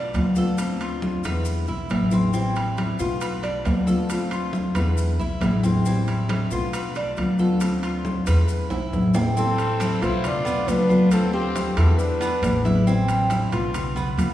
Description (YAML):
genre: latin, Cuban son and guajira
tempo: 137 BPM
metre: 4/4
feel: straight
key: A minor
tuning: A4 = 442 Hz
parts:
  - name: Cuban tres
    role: arpeggios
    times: 0.0-14.3 s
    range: B3 to C5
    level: -30 LUFS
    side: right 2 dB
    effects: none
  - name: upright bass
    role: bass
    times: 0.0-14.3 s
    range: A1 to E2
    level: -25 LUFS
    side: equal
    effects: none
  - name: nylon-string guitar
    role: accompaniment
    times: 0.1-14.3 s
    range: D3 to F4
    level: -28 LUFS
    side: left 2 dB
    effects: none
  - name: congas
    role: percussion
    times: 0.1-14.3 s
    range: none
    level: -24 LUFS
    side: left 1 dB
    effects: none
  - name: maracas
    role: percussion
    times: 0.1-14.3 s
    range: none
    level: -42 LUFS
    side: left 4 dB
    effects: none
  - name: timbales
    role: percussion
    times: 0.1-14.3 s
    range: none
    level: -32 LUFS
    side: right 2 dB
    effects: none
  - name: trumpet with bucket mute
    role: melody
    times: 9.4-12.6 s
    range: G4 to D5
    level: -26 LUFS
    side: equal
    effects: none
  - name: growling trumpet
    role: second line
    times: 9.4-12.6 s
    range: C4 to F4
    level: -33 LUFS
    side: left 2 dB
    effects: none
room: wet concert hall reverb, RT60 2.3 s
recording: recorded in a church or concert hall, small room ambience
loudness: -20 LUFS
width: side -13 dB against mid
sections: 0.0-9.4 A section; 9.4-14.3 B section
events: drum fill 8.7-9.4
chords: 0.0 Bm7b5; 0.6 Dm7; 1.5 E7; 2.3 Am7; 3.2 Bm7b5; 4.1 Dm7; 5.0 E7; 5.9 Am7; 6.7 Bm7b5; 7.6 Dm7; 8.5 E7; 9.4 Am7; 10.2 Bm7b5; 11.1 Dm7; 12.0 E7; 12.9 Am7; 13.7 Bm7b5